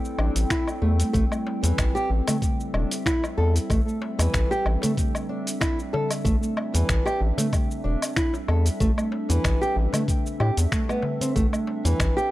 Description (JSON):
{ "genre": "organic downtempo", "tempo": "94 BPM", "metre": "4/4", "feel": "swing 54% on 16ths", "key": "A minor", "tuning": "A4 = 439 Hz", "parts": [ { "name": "warbly tape-like pad", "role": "sustained chords", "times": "0.0-12.3 s", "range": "G3 to G5", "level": "-32 LUFS", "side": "equal", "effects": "chorus, built-in reverb, sidechain pumping" }, { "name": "dusty soul sampler-style drum kit", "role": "drums", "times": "0.0-12.3 s", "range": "finger snaps, hi-hat, shaker, woodblock", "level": "-30 LUFS", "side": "left 1 dB", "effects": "none" }, { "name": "nylon-string guitar", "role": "arpeggios", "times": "0.2-12.3 s", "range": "E3 to A4", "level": "-27 LUFS", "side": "right 1 dB", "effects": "tape echo" }, { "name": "round analog bass", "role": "bass", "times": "0.2-12.1 s", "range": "E1 to A2", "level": "-22 LUFS", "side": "equal", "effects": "transformer saturation" }, { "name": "electronic kick drum", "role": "drums", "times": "0.5-12.1 s", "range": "none", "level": "-26 LUFS", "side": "equal", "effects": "none" }, { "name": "darbuka", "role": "percussion", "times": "1.5-12.0 s", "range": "none", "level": "-34 LUFS", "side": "left 3 dB", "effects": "none" } ], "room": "little or no reverb", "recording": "dry, gritty hardware recording, transformer saturation", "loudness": "-21 LUFS", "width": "side -16 dB against mid", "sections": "0.0-12.3 A section", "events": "none", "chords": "0.0 Am7" }